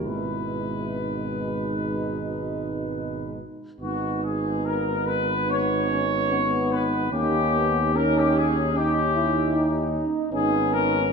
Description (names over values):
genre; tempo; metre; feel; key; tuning
classical, hymn-like piece for brass band; 62-77 BPM; 4/4; rubato; G# minor; A4 = 440 Hz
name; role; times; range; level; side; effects
dark trumpet section; melody; 0.0-11.1 s; F#4 to C#5; -26 LUFS; left 4 dB; none
warm French horn section; second line; 0.0-11.0 s; D#4 to E4; -29 LUFS; right 7 dB; none
warm trombone; accompaniment; 0.0-11.1 s; B2 to C#4; -31 LUFS; right 4 dB; none
warm trombone section; accompaniment; 0.0-11.1 s; G#3 to E4; -30 LUFS; left 3 dB; none
mellow tuba; bass; 0.0-11.1 s; G#1 to D#2; -29 LUFS; equal; none
room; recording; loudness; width
wet recital hall reverb, RT60 1.4 s; none; -22 LUFS; side -5 dB against mid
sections
0.0-3.8 A section; 3.8-11.1 A section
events
none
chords
0.0 G#m; 7.1 D#7; 10.3 G#m